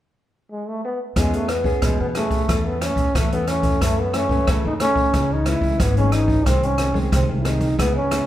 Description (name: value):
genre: samba and choro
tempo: 91 BPM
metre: 4/4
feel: straight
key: E major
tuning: A4 = 442 Hz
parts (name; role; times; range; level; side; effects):
- warm trombone; melody; 0.5-8.3 s; G#3 to E4; -22 LUFS; equal; none
- nylon-string guitar; accompaniment; 1.2-8.3 s; F#2 to A4; -26 LUFS; left 2 dB; none
- upright bass; bass; 1.2-8.2 s; G#1 to E3; -24 LUFS; equal; none
- open jazz drum kit; drums; 1.2-8.3 s; hi-hat, kick drum, rim click; -22 LUFS; equal; none
room: moderate large studio reverb, RT60 1.3 s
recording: heard from further back in the room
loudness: -18 LUFS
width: side -13 dB against mid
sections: 0.0-1.2 A section; 1.2-8.3 B section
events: none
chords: 0.0 N.C.; 1.2 E6; 2.5 A/E; 3.8 F#m7; 5.1 C#m; 6.5 G#/B#